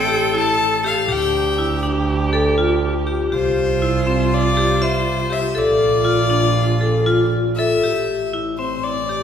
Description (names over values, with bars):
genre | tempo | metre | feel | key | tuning
contemporary instrumental, chamber music in an uneven meter | 241 BPM (eighths) | 9/8 | straight | unclear | A4 = 438 Hz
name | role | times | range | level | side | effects
clear violin | melody | 0.0-9.2 s | C5 to A5 | -22 LUFS | left 3 dB | none
rich viola | second line | 0.0-7.5 s | F4 to A4 | -24 LUFS | right 2 dB | none
warm double bass | bass | 0.0-9.2 s | A1 to D2 | -22 LUFS | right 3 dB | none
vibraphone with hard mallets | arpeggios | 0.1-9.2 s | C4 to E5 | -20 LUFS | left 2 dB | none
room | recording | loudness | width
wet scoring stage reverb, RT60 2.0 s | recorded in a church or concert hall | -16 LUFS | side -8 dB against mid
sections
0.0-7.8 A section; 7.8-9.2 B section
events
none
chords
0.0 A7(no3); 1.1 Dsus4; 3.3 Fsus2/C; 5.5 Bbmaj7; 7.8 C/A